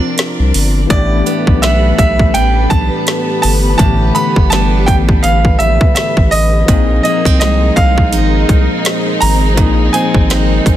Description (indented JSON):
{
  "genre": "contemporary R&B",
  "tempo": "83 BPM",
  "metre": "4/4",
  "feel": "swing 58% on 16ths",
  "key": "unclear",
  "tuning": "A4 = 439 Hz",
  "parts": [
    { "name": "bright grand piano", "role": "melody", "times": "0.0-10.8 s", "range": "D5 to B5", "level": "-16 LUFS", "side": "right 2 dB", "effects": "tape echo" },
    { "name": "barky tine electric piano", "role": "accompaniment", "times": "0.0-10.8 s", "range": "D3 to Bb4", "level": "-18 LUFS", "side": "left 6 dB", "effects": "overdrive, medium stereo tremolo" },
    { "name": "warm studio string section", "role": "sustained chords", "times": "0.0-10.8 s", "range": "B3 to D5", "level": "-21 LUFS", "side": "left 1 dB", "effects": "none" },
    { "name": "picked steel-string acoustic guitar", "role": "arpeggios", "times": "0.0-10.8 s", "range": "A2 to Eb4", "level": "-21 LUFS", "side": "right 10 dB", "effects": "tape echo" },
    { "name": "trap drum kit", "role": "drums", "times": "0.2-10.8 s", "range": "hi-hat, kick drum, snare drum", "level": "-14 LUFS", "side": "equal", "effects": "none" },
    { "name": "saturated sub bass", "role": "bass", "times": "0.4-10.8 s", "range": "G1 to C2", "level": "-14 LUFS", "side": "equal", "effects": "none" }
  ],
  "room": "small room reverb",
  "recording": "dense, heavily limited modern master",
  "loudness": "-9 LUFS",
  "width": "side -12 dB against mid",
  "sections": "0.9-10.8 A section",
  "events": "break 0.0-0.9",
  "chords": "0.0 C9sus4; 0.9 A9sus4; 6.7 Bb9sus4",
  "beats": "0.18 | 0.90 1.62 2.35 3.07 | 3.79 4.51 5.24 5.96 | 6.68 7.41 8.13 8.85 | 9.57 10.30"
}